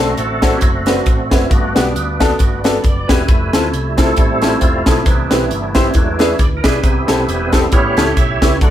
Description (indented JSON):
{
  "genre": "uptempo gospel",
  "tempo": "135 BPM",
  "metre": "4/4",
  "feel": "swing 56% on 8ths",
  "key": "G major",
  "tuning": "A4 = 440 Hz",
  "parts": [
    { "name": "clear grand piano", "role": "accompaniment", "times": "0.0-8.7 s", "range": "G2 to D5", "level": "-19 LUFS", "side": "left 2 dB", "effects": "none" },
    { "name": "bright tonewheel organ", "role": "sustained chords", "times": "0.0-8.7 s", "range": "E3 to E5", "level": "-19 LUFS", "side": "right 2 dB", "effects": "slow rotary speaker, chorus vibrato" },
    { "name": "mellow French horn section", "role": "sustained chords", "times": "0.0-8.7 s", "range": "C3 to E5", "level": "-30 LUFS", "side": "right 1 dB", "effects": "none" },
    { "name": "hollow-body short-scale fingered electric bass", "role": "bass", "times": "0.0-8.7 s", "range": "E1 to E2", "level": "-22 LUFS", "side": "equal", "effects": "none" },
    { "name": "crisp fusion drum kit", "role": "drums", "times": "0.2-8.7 s", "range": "hi-hat, kick drum, snare drum", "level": "-14 LUFS", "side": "equal", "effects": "none" }
  ],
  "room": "light reverb",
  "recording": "band playing live in one room",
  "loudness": "-12 LUFS",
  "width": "side -11 dB against mid",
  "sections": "0.0-8.7 A section",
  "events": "tonewheel organ solo 0.0-8.7",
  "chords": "0.0 D7; 1.5 Gmaj7; 3.3 Fmaj7; 5.1 Cmaj7; 6.0 E7; 6.8 Am7; 7.7 A7"
}